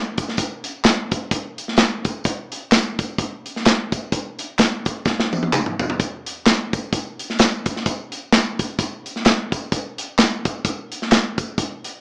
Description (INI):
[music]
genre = gospel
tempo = 129 BPM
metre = 4/4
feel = swing 57% on 8ths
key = none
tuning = none
[part]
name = modern studio drum kit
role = drums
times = 0.2-11.9 s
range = hi-hat, kick drum, snare drum, toms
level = -18 LUFS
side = equal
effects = none
[part]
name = tambourine and handclaps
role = percussion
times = 0.2-11.9 s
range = none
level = -27 LUFS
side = equal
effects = none
[sound]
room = light reverb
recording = rough home demo mix, small speaker sound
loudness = -18 LUFS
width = side -33 dB against mid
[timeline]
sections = 0.0-12.0 A section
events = drum fill 5.1-6.0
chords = none